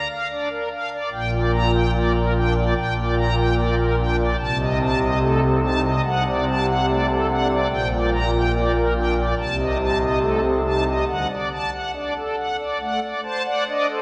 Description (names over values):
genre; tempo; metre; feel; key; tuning
classical, chorale-style piece for pipe organ; 72 BPM; 4/4; uneven beats, rubato; G minor; A4 = 438 Hz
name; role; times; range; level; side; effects
pipe organ, strings celeste; solo; 0.0-14.0 s; Bb1 to Bb5; -21 LUFS; equal; none
room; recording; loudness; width
wet church reverb, RT60 3.7 s; none; -21 LUFS; mono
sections
0.0-14.0 A section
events
none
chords
0.0 Bb/D; 1.1 Gm/Bb; 4.4 Adim/C; 6.0 D7/C; 7.7 Gm/Bb; 9.4 Adim/C; 11.1 D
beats
0.30 | 1.12 1.95 2.76 3.58 | 4.39 5.21 6.04 6.87 | 7.70 8.53 9.36 10.21 | 11.07 11.94 12.81 13.67